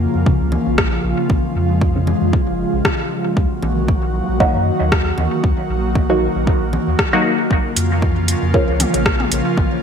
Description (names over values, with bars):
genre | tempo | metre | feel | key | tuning
dub techno | 116 BPM | 4/4 | swing 55% on 16ths | Bb minor | A4 = 440 Hz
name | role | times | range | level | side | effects
airy breathy pad | sustained chords | 0.0-9.8 s | Db3 to Gb4 | -20 LUFS | equal | chorus, sidechain pumping
pure sine sub bass | bass | 0.0-9.7 s | F1 to Gb2 | -21 LUFS | equal | sidechain pumping
filtered dub chord stab | stabs | 0.3-8.8 s | Db3 to Gb4 | -20 LUFS | equal | chorus, phaser, sidechain pumping, dub echo
electronic kick drum | drums | 0.3-9.7 s | none | -18 LUFS | equal | overdrive, small room ambience
electronic congas and toms | percussion | 0.5-9.7 s | none | -28 LUFS | left 1 dB | none
deep house drum kit | drums | 0.8-9.4 s | hi-hat, rim click | -22 LUFS | equal | overdrive, small room ambience, gated reverb, dub echo
room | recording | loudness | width
moderate lush hall reverb, RT60 1.6 s | bright 1980s-style digital production | -15 LUFS | side -7 dB against mid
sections
0.0-9.8 A section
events
filter sweep on synth stab 0.0-9.8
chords
0.0 Bbm; 3.4 Ebm; 7.5 Bbm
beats
0.27 0.78 | 1.30 1.82 2.33 2.85 | 3.37 3.88 4.40 4.92 | 5.44 5.95 6.47 6.99 | 7.51 8.02 8.54 9.06 | 9.57